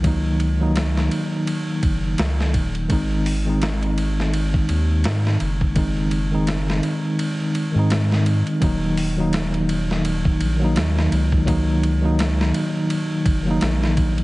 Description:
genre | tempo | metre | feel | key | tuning
trip hop | 84 BPM | 4/4 | swing 58% on 16ths | Eb dorian | A4 = 441 Hz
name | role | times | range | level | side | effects
mellow tine electric piano | accompaniment | 0.0-14.2 s | Eb3 to Eb4 | -21 LUFS | equal | medium stereo tremolo, tape echo
round analog bass | bass | 0.0-14.2 s | Eb1 to Ab2 | -22 LUFS | equal | none
dusty soul sampler-style drum kit | drums | 0.0-14.2 s | hi-hat, kick drum, ride cymbal, snare drum | -25 LUFS | equal | none
room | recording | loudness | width
little or no reverb | heavily compressed radio sound, vinyl crackle, nothing above 10.5 kHz, faint mains hum | -18 LUFS | side -20 dB against mid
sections
0.0-8.6 A section; 8.6-14.2 B section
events
kick drops out 7.2-8.6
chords
0.0 Ebm; 2.9 Ab; 8.6 Ebm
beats
| 0.04 0.76 1.47 2.19 | 2.90 3.62 4.33 5.04 | 5.76 6.47 7.19 7.90 | 8.62 9.33 10.04 10.76 | 11.47 12.19 12.90 13.62

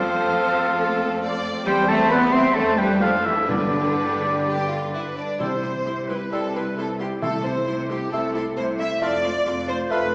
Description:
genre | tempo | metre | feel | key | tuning
quick classical-period movement for symphony orchestra | 133 BPM | 4/4 | rubato | C major | A4 = 440 Hz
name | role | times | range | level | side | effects
clear chamber violin section | melody | 0.0-10.0 s | G4 to C6 | -36 LUFS | equal | none
bright flute section | second line | 0.0-10.1 s | G4 to E5 | -32 LUFS | equal | none
rich studio violin section | second line | 0.0-10.1 s | B3 to E5 | -33 LUFS | equal | none
warm clarinet | second line | 0.0-10.1 s | D4 to E5 | -33 LUFS | equal | none
warm oboe | second line | 0.0-10.1 s | D5 to E6 | -27 LUFS | equal | none
rich chamber viola section | accompaniment | 0.0-10.0 s | D3 to F4 | -33 LUFS | equal | none
dark French horn section | sustained chords | 0.0-10.1 s | D3 to F4 | -30 LUFS | equal | none
clear chamber cello section | bass | 0.0-10.1 s | F2 to C4 | -31 LUFS | equal | none
dark chamber double bass section | bass | 0.0-10.1 s | F1 to G2 | -38 LUFS | equal | none
timpani | percussion | 3.5-7.9 s | G2 to C3 | -34 LUFS | equal | none
warm bassoon | accompaniment | 5.4-10.1 s | G3 to A3 | -33 LUFS | equal | none
room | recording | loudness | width
wet recital hall reverb, RT60 1.5 s | recorded in a church or concert hall, vinyl crackle, small speaker sound | -22 LUFS | mono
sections
0.0-5.4 A section; 5.4-10.1 B section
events
none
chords
0.0 F; 1.7 C/E; 2.6 Dm7/F; 3.5 G; 5.4 C; 7.2 Am/C; 9.0 F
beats
0.33 0.78 1.22 | 1.66 2.10 2.56 3.01 | 3.49 3.98 4.46 4.93 | 5.39 5.86 6.32 6.77 | 7.22 7.67 8.13 8.58 | 9.02 9.46 9.91

